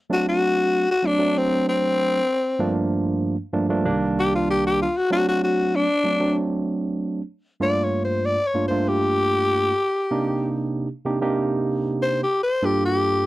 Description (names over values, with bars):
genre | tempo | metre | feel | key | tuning
blues | 96 BPM | 4/4 | straight | G minor | A4 = 440 Hz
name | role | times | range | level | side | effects
growling tenor saxophone | melody | 0.1-13.3 s | C4 to D5 | -20 LUFS | left 2 dB | none
barky tine electric piano | accompaniment | 0.1-13.3 s | C2 to A4 | -23 LUFS | right 2 dB | overdrive
room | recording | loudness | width
little or no reverb | dry, close 1970s-style studio recording | -20 LUFS | side -17 dB against mid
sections
0.0-7.6 A section; 7.6-13.3 B section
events
tenor saxophone solo 0.0-7.6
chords
0.1 D7; 2.6 Gm7; 3.9 Cm7; 5.1 D7; 7.6 Gm7; 10.1 Cm7; 12.6 Gm7